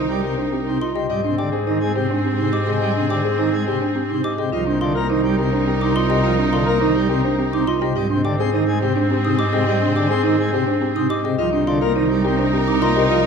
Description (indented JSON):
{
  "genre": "classical, minimalist pattern music",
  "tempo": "105 BPM",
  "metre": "3/4",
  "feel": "straight",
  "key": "C minor",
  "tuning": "A4 = 440 Hz",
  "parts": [
    { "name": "warm grand piano", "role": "melody", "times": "0.0-13.3 s", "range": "G4 to G5", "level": "-26 LUFS", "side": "left 13 dB", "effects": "none" },
    { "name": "clear oboe", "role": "second line", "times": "0.0-13.3 s", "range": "C4 to Eb4", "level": "-29 LUFS", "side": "right 4 dB", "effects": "none" },
    { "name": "pipe organ, plenum", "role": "accompaniment", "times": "0.0-13.2 s", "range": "C3 to C4", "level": "-25 LUFS", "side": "left 3 dB", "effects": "none" },
    { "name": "rich symphonic string section", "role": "sustained chords", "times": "0.0-13.3 s", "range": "C4 to Bb4", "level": "-27 LUFS", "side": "left 4 dB", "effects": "none" },
    { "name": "folk marimba with medium mallets", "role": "arpeggios", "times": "0.0-13.3 s", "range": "C4 to C5", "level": "-22 LUFS", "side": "right 5 dB", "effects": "none" },
    { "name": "clear cello", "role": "bass", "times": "0.0-13.3 s", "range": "C2 to Ab2", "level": "-23 LUFS", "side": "right 3 dB", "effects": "none" },
    { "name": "xylophone with rubber mallets", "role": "arpeggios", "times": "0.8-13.1 s", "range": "Eb5 to Eb6", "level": "-28 LUFS", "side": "left 4 dB", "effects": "none" }
  ],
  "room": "light reverb",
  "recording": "close, detailed microphones",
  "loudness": "-17 LUFS",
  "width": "side -6 dB against mid",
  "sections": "0.0-13.3 A section",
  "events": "none",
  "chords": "0.0 Cm9; 1.1 Abmaj7; 4.5 Cm9; 8.0 Abmaj7; 11.4 Cm9",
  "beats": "0.53 | 1.10 1.67 2.24 | 2.82 3.39 3.96 | 4.53 5.10 5.67 | 6.24 6.82 7.39 | 7.96 8.53 9.10 | 9.67 10.24 10.82 | 11.39 11.96 12.53 | 13.10"
}